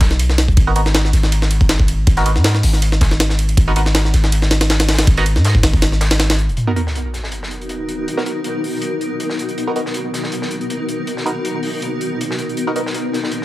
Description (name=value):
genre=drum and bass, jungle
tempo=160 BPM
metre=4/4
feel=swing 54% on 16ths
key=unclear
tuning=A4 = 443 Hz
part: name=long sustained 808-style bass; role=bass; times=0.0-6.6 s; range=D#1 to G#2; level=-15 LUFS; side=equal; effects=none
part: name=crunchy breakbeat drum kit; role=drums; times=0.0-13.4 s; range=hi-hat, snare drum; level=-27 LUFS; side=left 1 dB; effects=high-pass filter on hats, high-pass filter on snare, high-pass filter on room
part: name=jungle sampler-style drum kit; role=drums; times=0.0-6.4 s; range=hi-hat, kick drum, ride cymbal, snare drum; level=-16 LUFS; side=equal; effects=none
part: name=band-passed chord stab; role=stabs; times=0.7-12.8 s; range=B3 to A#4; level=-24 LUFS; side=right 2 dB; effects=phaser, cassette tape, dub echo
part: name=granular cloud pad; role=sustained chords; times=7.1-13.4 s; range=B3 to A#4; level=-21 LUFS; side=left 1 dB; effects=built-in reverb, vintage 12-bit sampler grit
part: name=sub drop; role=sound effects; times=6.6-8.1 s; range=none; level=-23 LUFS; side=equal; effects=none
room=digital ambience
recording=none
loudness=-14 LUFS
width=side -16 dB against mid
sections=0.0-6.6 A section; 6.6-13.4 B section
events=filter sweep on synth stab 0.0-6.6; impact 6.6-8.1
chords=0.0 G#m; 6.6 Bmaj7